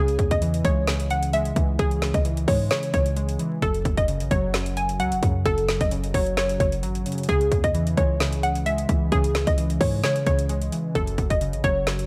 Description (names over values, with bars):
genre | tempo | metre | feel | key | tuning
hip hop, trap | 131 BPM | 4/4 | half-time | C# minor | A4 = 439 Hz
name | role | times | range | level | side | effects
hollow square pluck | melody | 0.0-12.1 s | G#4 to G#5 | -28 LUFS | equal | chorus, low-pass filter, tape echo
warbly lo-fi synth keys | accompaniment | 0.0-12.1 s | F#2 to G#3 | -30 LUFS | equal | chorus, low-pass filter
warm 808-style bass | bass | 0.0-12.1 s | F#1 to G#2 | -29 LUFS | equal | none
trap drum kit | drums | 0.1-12.1 s | hi-hat, kick drum, snare drum | -28 LUFS | equal | none
room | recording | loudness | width
little or no reverb | vinyl crackle | -23 LUFS | mono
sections
0.0-12.1 A section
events
none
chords
0.0 C#m; 3.6 F#5; 7.3 C#m; 11.0 F#m